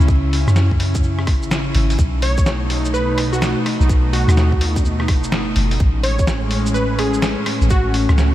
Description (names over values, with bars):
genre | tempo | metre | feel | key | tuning
future garage | 126 BPM | 4/4 | swing 64% on 16ths | unclear | A4 = 440 Hz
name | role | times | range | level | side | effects
airy breathy pad | sustained chords | 0.0-8.3 s | A2 to E4 | -21 LUFS | equal | chorus, vintage 12-bit sampler grit, sidechain pumping
soft 808-style bass | bass | 0.0-8.3 s | F#1 to F#2 | -18 LUFS | equal | sidechain pumping
lo-fi sampler-style drum kit | drums | 0.0-8.3 s | hi-hat, rim click, shaker, snare drum | -24 LUFS | equal | small room ambience
electronic kick drum | drums | 0.1-7.8 s | none | -18 LUFS | equal | small room ambience
plucky unison lead | melody | 2.2-8.0 s | F#4 to C#5 | -24 LUFS | equal | analog delay
room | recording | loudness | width
light reverb, digital ambience | vinyl crackle | -15 LUFS | side -14 dB against mid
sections
0.0-8.3 A section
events
none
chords
0.0 C#m; 2.0 B7; 5.8 Amaj7